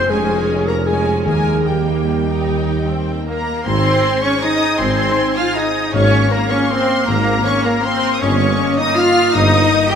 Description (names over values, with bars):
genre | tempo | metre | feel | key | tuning
classical, orchestral ballroom waltz | 142-171 BPM | 3/4 | rubato | Ab major | A4 = 443 Hz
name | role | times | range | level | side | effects
warm symphonic violin section | melody | 0.0-10.0 s | G5 to G6 | -22 LUFS | left 3 dB | none
dark clarinet | second line | 0.0-10.0 s | Bb3 to C5 | -23 LUFS | left 1 dB | none
warm symphonic violin section | second line | 0.0-10.0 s | Bb4 to Bb5 | -25 LUFS | left 3 dB | none
rich symphonic viola section | accompaniment | 0.0-10.0 s | Bb3 to Bb4 | -23 LUFS | right 1 dB | none
concert harp | arpeggios | 0.0-10.0 s | F2 to Db6 | -23 LUFS | left 6 dB | none
mellow tuba | bass | 0.0-9.6 s | F1 to Eb2 | -24 LUFS | right 5 dB | none
rich symphonic cello section | bass | 0.0-10.0 s | G3 to G4 | -23 LUFS | right 2 dB | none
rich symphonic double bass section | bass | 0.0-9.6 s | F1 to Eb2 | -24 LUFS | right 4 dB | none
timpani | percussion | 1.3-1.8 s | Eb3 | -27 LUFS | right 2 dB | none
concert flute | second line | 3.3-10.0 s | Bb4 to G5 | -25 LUFS | equal | none
mellow French horn section | sustained chords | 3.3-10.0 s | Bb3 to G4 | -22 LUFS | left 2 dB | none
clear oboe | second line | 3.7-10.0 s | Eb5 to Ab5 | -26 LUFS | right 1 dB | none
room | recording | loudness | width
moderate concert hall reverb, RT60 1.8 s | none | -14 LUFS | side -7 dB against mid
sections
0.0-3.7 A section; 3.7-10.0 B section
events
none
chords
0.1 Db/F; 1.3 Eb; 3.7 Ab; 5.9 Bbm7/Ab; 8.2 Eb7/G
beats
| 0.09 0.47 0.87 | 1.26 1.66 2.08 | 2.47 2.86 3.27 | 3.66 4.04 4.43 | 4.80 5.17 5.56 | 5.93 6.31 6.71 | 7.08 7.45 7.84 | 8.22 8.59 8.97 | 9.34 9.71